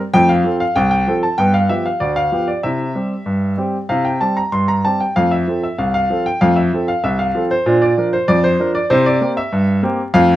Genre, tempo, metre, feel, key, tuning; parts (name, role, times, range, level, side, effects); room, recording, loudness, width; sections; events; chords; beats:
ragtime piano; 96 BPM; 2/4; straight; F major; A4 = 440 Hz
clear grand piano; solo; 0.1-10.4 s; C2 to C6; -14 LUFS; equal
moderate studio reverb, RT60 0.8 s; minimal, uncompressed stereo recording, vinyl crackle; -14 LUFS; side -14 dB against mid
0.0-10.4 A section
0.1 F; 1.4 G7; 2.6 C; 5.2 F; 7.7 Bb; 8.9 C7
| 0.15 0.77 | 1.39 2.01 | 2.64 3.27 | 3.90 4.53 | 5.16 5.78 | 6.41 7.03 | 7.65 8.27 | 8.89 9.51 | 10.13